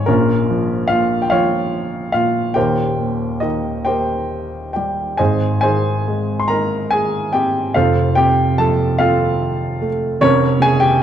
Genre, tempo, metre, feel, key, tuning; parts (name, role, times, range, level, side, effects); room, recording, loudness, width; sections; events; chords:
classical, lyrical solo piano; 45-50 BPM (dotted quarters); 6/8; rubato; Ab major; A4 = 441 Hz
warm upright piano; solo; 0.0-11.0 s; Eb1 to C6; -15 LUFS; equal
moderate recital hall reverb, RT60 1.6 s; dark, warm production; -15 LUFS; side -9 dB against mid
0.0-11.0 A section
0.1 Bbm; 2.6 Eb6; 5.2 Abadd9; 7.7 F; 10.2 Bbm/F